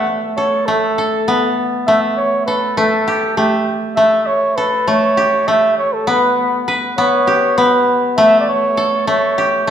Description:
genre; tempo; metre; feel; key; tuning
contemporary instrumental, contemporary; 200 BPM (eighths); 7/8; straight; unclear; A4 = 441 Hz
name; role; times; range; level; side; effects
breathy flugelhorn; melody; 0.0-9.7 s; G4 to E5; -15 LUFS; equal; none
koto; arpeggios; 0.0-9.7 s; A3 to B4; -16 LUFS; equal; none
room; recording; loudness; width
wet recital hall reverb, RT60 1.6 s; minimal, uncompressed stereo recording; -12 LUFS; side -9 dB against mid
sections
0.0-9.7 A section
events
none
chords
0.0 Asus2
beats
0.08 0.38 0.68 0.98 1.28 1.58 | 1.88 2.17 2.48 2.77 3.08 3.37 3.67 | 3.97 4.27 4.57 4.87 5.17 5.47 5.77 | 6.07 6.37 6.67 6.97 7.27 7.57 7.87 | 8.17 8.47 8.77 9.07 9.37 9.67

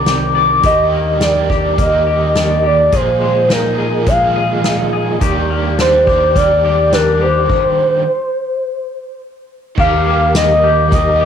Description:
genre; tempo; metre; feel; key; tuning
dream pop; 105 BPM; 4/4; straight; Eb major; A4 = 439 Hz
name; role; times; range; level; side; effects
overdriven electric guitar; accompaniment; 0.0-11.3 s; Bb2 to Ab4; -22 LUFS; right 8 dB; tremolo, wide subtle chorus, cassette tape
mellow tonewheel organ; sustained chords; 0.0-11.3 s; C2 to Eb5; -18 LUFS; equal; chorus vibrato, fast rotary speaker, cassette tape
clean electric guitar; arpeggios; 0.0-11.3 s; Bb2 to D5; -19 LUFS; left 7 dB; lush chorus, cassette tape, analog delay, plate reverb
soft-mallet drum kit; drums; 0.1-11.1 s; crash cymbal, hi-hat, kick drum, snare drum, tambourine; -18 LUFS; equal; cassette tape
warm velvety synth lead; melody; 0.7-11.3 s; Bb4 to F5; -14 LUFS; equal; chorus, cassette tape, analog delay
room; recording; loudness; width
wet studio reverb, RT60 0.7 s; home recording on cassette; -11 LUFS; side -8 dB against mid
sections
0.0-9.8 A section; 9.8-11.3 B section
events
stop 7.5-9.8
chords
0.0 Cmadd9; 0.6 Ebmaj7; 2.9 Bb7sus4; 5.2 Ebmaj7; 7.5 N.C.; 9.8 Eb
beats
0.07 | 0.64 1.21 1.78 2.35 | 2.92 3.50 4.07 4.64 | 5.21 5.78 6.35 6.92 | 7.50 8.07 8.64 9.21 | 9.78 10.35 10.93

